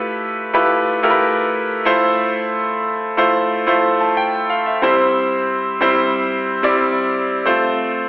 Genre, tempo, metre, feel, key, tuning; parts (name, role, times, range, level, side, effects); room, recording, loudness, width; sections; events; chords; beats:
pop; 91 BPM; 4/4; straight; C major; A4 = 440 Hz
clear concert grand piano; solo; 0.0-8.1 s; G3 to A5; -14 LUFS; equal
wet recital hall reverb, RT60 1.5 s; telephone sound; -14 LUFS; side -20 dB against mid
0.0-4.8 A section; 4.8-8.1 B section
0.0 G13; 1.9 Fmaj7; 4.8 C; 7.5 F
0.21 0.87 1.53 | 2.19 2.85 3.51 4.17 | 4.83 5.48 6.14 6.80 | 7.46